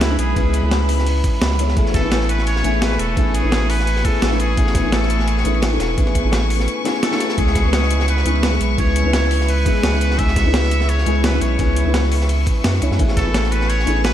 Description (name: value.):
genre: liquid drum and bass.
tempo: 171 BPM.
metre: 4/4.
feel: straight.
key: A major.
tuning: A4 = 441 Hz.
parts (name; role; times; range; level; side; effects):
trumpet with straight mute; melody; 0.0-14.1 s; E4 to E5; -26 LUFS; equal; tape echo.
felt-muted upright piano; accompaniment; 0.0-14.1 s; G#3 to C#5; -22 LUFS; left 2 dB; analog chorus, diffuse ambient delay.
warm studio string section; sustained chords; 0.0-14.1 s; B4 to C#6; -26 LUFS; left 2 dB; sidechain pumping.
saturated sub bass; bass; 0.0-14.1 s; E1 to F#2; -18 LUFS; equal; none.
breakbeat sampler-style drum kit; drums; 0.0-14.1 s; hi-hat, snare drum; -24 LUFS; equal; none.
crunchy breakbeat drum kit; drums; 0.0-14.1 s; hi-hat, ride cymbal, snare drum; -29 LUFS; equal; high-pass filter on cymbals, high-pass filter on hats, high-pass filter on snare, high-pass filter on room.
electronic kick drum; drums; 0.4-13.2 s; none; -19 LUFS; equal; none.
room: light reverb, small room ambience.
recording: none.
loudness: -15 LUFS.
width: side -11 dB against mid.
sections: 0.0-14.1 A section.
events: none.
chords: 0.0 C#m7; 1.8 Amaj9; 7.4 C#m7; 13.0 Amaj9.